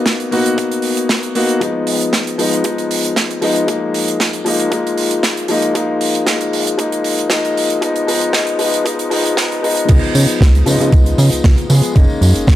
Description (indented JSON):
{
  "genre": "nu-disco, nu disco",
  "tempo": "116 BPM",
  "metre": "4/4",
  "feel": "swing 54% on 16ths",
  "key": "unclear",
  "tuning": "A4 = 439 Hz",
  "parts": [
    { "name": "warm concert grand piano", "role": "accompaniment", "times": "0.0-12.6 s", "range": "F3 to G#4", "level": "-16 LUFS", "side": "left 2 dB", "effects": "sidechain pumping, slapback echo" },
    { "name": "electronic kick drum", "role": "drums", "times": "0.1-12.6 s", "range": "none", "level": "-13 LUFS", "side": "equal", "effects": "high-pass filter on kick, high-pass filter on room" },
    { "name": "modern studio drum kit", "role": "drums", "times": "0.1-12.6 s", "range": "crash cymbal, hi-hat, snare drum, tambourine", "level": "-19 LUFS", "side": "right 2 dB", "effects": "high-pass filter on hats, high-pass filter on cymbals, high-pass filter on snare, high-pass filter on perc, high-pass filter on room" },
    { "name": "chorused synth bass", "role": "bass", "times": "9.9-12.6 s", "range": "F#1 to C#3", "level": "-12 LUFS", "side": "right 1 dB", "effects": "sidechain pumping" }
  ],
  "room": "light reverb, small room ambience",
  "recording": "high-pass filter",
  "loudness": "-12 LUFS",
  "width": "side -13 dB against mid",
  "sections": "0.0-9.9 A section; 9.9-12.6 B section",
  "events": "build-up 0.0-9.9; drop 9.9-12.6",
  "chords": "0.0 Bmaj7/A#; 1.6 Fm7b5; 3.7 A#7sus4/E#; 7.6 G#m; 9.9 C#7; 12.0 F#69",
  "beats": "0.06 0.58 1.10 | 1.61 2.13 2.65 3.17 | 3.68 4.20 4.72 5.24 | 5.75 6.27 6.79 7.30 | 7.82 8.34 8.86 9.37 | 9.89 10.41 10.93 11.44 | 11.96 12.48"
}